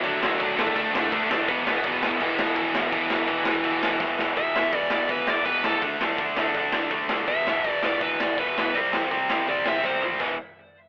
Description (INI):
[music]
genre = punk rock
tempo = 165 BPM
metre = 4/4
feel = straight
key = E minor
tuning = A4 = 440 Hz
[part]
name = high-gain lead guitar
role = melody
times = 0.0-10.0 s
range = E3 to E5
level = -30 LUFS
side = equal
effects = distortion, tape echo
[part]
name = cranked stack guitar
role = riff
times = 0.0-10.4 s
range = E2 to D4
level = -27 LUFS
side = equal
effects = overdrive
[part]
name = overdriven picked electric bass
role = bass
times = 0.0-10.4 s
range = E1 to F#2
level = -46 LUFS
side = equal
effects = none
[part]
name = raw garage drum kit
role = drums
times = 0.0-10.3 s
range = crash cymbal, hi-hat, kick drum, snare drum, toms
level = -30 LUFS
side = equal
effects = none
[sound]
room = little or no reverb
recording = telephone sound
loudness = -24 LUFS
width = mono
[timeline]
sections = 0.0-4.4 A section; 4.4-10.2 B section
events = drum fill 4.0-4.4, 9.8-10.2; lead electric guitar solo 4.4-10.2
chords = 0.0 D; 1.5 E5; 5.8 D5; 7.3 E5; 8.7 C5; 10.2 E5